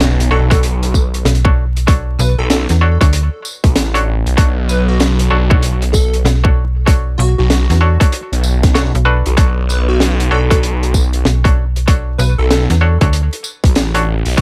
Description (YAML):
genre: glitch hop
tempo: 96 BPM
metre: 4/4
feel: swing 63% on 16ths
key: B minor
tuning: A4 = 441 Hz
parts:
  - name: plucky unison lead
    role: melody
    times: 0.0-12.6 s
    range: F#4 to B4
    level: -25 LUFS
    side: equal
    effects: cassette tape, tape echo
  - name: muted clav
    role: stabs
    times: 0.0-14.4 s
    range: D4 to C#5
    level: -22 LUFS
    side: equal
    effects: overdrive, vintage 12-bit sampler grit, sidechain pumping, tape echo
  - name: phased detuned saw bass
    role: bass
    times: 0.0-14.4 s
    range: A1 to B1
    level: -16 LUFS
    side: equal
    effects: phaser, tube saturation
  - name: crunchy breakbeat drum kit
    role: drums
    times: 0.0-14.4 s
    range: hi-hat, rim click, snare drum, tambourine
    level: -21 LUFS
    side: equal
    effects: none
  - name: impact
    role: sound effects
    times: 0.0-1.9 s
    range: none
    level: barely audible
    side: none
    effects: none
  - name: electronic kick drum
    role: drums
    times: 0.5-14.4 s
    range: none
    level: -14 LUFS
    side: equal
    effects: overdrive
  - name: slap-like FM bass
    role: bass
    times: 1.3-13.3 s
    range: B1 to E2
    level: -15 LUFS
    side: equal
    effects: none
room: little or no reverb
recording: vinyl crackle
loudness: -13 LUFS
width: mono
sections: 0.0-14.4 A section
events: impact 0.0-1.9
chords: 0.0 Bm9